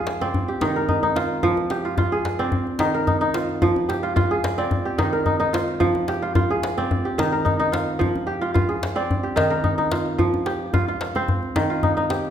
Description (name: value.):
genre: west african traditional, West African string and xylophone music.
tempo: 110 BPM.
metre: 4/4.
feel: straight.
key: F dorian.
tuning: A4 = 439 Hz.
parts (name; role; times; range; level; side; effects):
kora; arpeggios; 0.0-12.3 s; Eb3 to D5; -21 LUFS; right 1 dB; none.
djembe; percussion; 0.1-12.3 s; none; -25 LUFS; left 2 dB; none.
room: wet recital hall reverb, RT60 1.4 s.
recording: minimal, uncompressed stereo recording.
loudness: -19 LUFS.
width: side -9 dB against mid.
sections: 0.0-10.2 A section; 10.2-12.3 B section.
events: none.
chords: 0.3 Eb; 1.4 Fm; 2.5 Eb5; 3.6 Fm; 4.7 Eb; 5.8 Fm; 6.9 Eb; 8.0 Fm; 9.1 Eb; 10.2 F5; 11.3 Eb.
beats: 0.35 0.89 | 1.44 1.98 2.53 3.07 | 3.62 4.16 4.71 5.26 | 5.80 6.35 6.90 7.45 | 7.99 8.54 9.09 9.64 | 10.19 10.73 11.28 11.83.